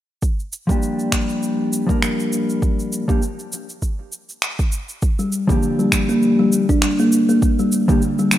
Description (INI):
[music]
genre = organic downtempo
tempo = 100 BPM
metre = 4/4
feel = swing 56% on 16ths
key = G minor pentatonic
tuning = A4 = 440 Hz
[part]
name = electronic kick drum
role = drums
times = 0.2-8.0 s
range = none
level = -20 LUFS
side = right 1 dB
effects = overdrive
[part]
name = electronic shaker and finger snaps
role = drums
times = 0.2-8.4 s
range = none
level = -24 LUFS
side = right 1 dB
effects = overdrive
[part]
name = mellow electric guitar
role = accompaniment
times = 0.7-8.0 s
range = F3 to Bb4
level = -21 LUFS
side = left 1 dB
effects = sidechain pumping, ping-pong delay
[part]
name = kalimba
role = arpeggios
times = 5.2-8.4 s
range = D3 to D4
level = -16 LUFS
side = equal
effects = ping-pong delay
[sound]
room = light reverb, digital ambience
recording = rough home demo mix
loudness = -16 LUFS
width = side -12 dB against mid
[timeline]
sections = 0.2-8.4 A section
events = none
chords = 0.2 Gm7